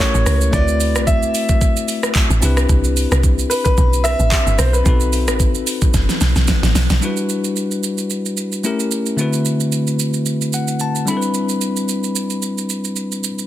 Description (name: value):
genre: amapiano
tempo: 111 BPM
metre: 4/4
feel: swing 55% on 16ths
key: E minor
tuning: A4 = 440 Hz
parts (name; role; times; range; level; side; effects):
- warm grand piano; melody; 0.0-6.3 s; B4 to E5; -21 LUFS; equal; ping-pong delay
- bell-like tine electric piano; accompaniment; 0.0-13.5 s; D3 to B5; -20 LUFS; left 2 dB; none
- deep log drum bass; bass; 0.1-7.0 s; F#1 to D2; -16 LUFS; equal; none
- smooth R&B drum kit; drums; 0.1-13.5 s; handclaps, hi-hat, kick drum, rim click, shaker, snare drum; -18 LUFS; right 1 dB; none
room: little or no reverb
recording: dense, heavily limited modern master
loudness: -15 LUFS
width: side -13 dB against mid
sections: 0.0-7.0 A section; 7.0-13.5 B section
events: drop 0.0-7.0; drum fill 5.9-7.0; tine electric piano fill 10.3-11.3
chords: 0.0 A7b9; 0.5 D13; 2.4 Cmaj9; 4.9 B7b9; 7.0 Em9; 8.6 A7b9; 9.2 D13; 11.1 Cmaj9